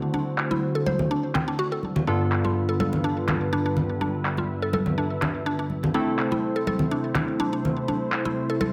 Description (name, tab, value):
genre	afro house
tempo	124 BPM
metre	4/4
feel	swing 54% on 16ths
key	unclear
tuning	A4 = 438 Hz
part	warm analog pad	sustained chords	0.0-8.7 s	C3 to E5	-32 LUFS	equal	subtle chorus
part	warm analog keys	stabs	0.0-8.7 s	G2 to A4	-31 LUFS	equal	chorus, delay
part	mallet-like synth pluck	arpeggios	0.1-8.7 s	C4 to C5	-31 LUFS	equal	chorus, phaser, delay
part	congas	percussion	0.1-8.7 s	none	-31 LUFS	equal	none
part	electronic handclaps	drums	0.4-8.2 s	none	-32 LUFS	equal	low-pass filter on snare, studio reverb
room	moderate plate reverb, RT60 1.2 s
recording	none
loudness	-25 LUFS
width	mono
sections	0.0-8.7 A section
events	filter sweep on synth keys 0.0-8.7; filter sweep on analog synth pad 0.0-8.7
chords	0.0 D7; 2.1 G7; 5.9 Am